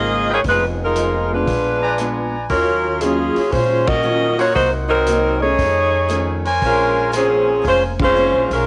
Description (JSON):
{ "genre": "jazz, big band swing", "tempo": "117 BPM", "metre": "4/4", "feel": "swing 68% on 8ths", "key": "Bb minor", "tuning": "A4 = 440 Hz", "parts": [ { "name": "bright saxophone section", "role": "melody", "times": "0.0-8.7 s", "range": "F3 to Eb5", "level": "-19 LUFS", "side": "equal", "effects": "cassette tape, plate reverb" }, { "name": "picked steel-string acoustic guitar", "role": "accompaniment", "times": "0.0-8.5 s", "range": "F2 to C5", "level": "-28 LUFS", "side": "equal", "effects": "plate reverb" }, { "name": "warm baby grand piano", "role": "accompaniment", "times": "0.0-8.2 s", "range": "Gb3 to Ab4", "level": "-28 LUFS", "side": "equal", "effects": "plate reverb" }, { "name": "upright bass", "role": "bass", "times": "0.0-8.7 s", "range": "F1 to Bb2", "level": "-27 LUFS", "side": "equal", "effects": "none" }, { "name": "clear trumpet section", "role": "stabs", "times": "0.3-7.9 s", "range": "Ab4 to Bb5", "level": "-25 LUFS", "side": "equal", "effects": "plate reverb" }, { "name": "vintage drum kit", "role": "drums", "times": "0.4-8.6 s", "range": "hi-hat, kick drum, ride cymbal", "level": "-30 LUFS", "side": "equal", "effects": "cassette tape" } ], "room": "moderate booth ambience, RT60 0.2 s", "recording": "home recording on cassette", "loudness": "-17 LUFS", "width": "mono", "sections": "0.0-8.7 A section", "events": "band accent 3.8, 7.9", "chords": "0.4 Fm7b5; 1.5 Bb7b9; 2.5 Ebm9; 4.6 Cm7b5; 5.6 F7alt; 6.6 Bbm9" }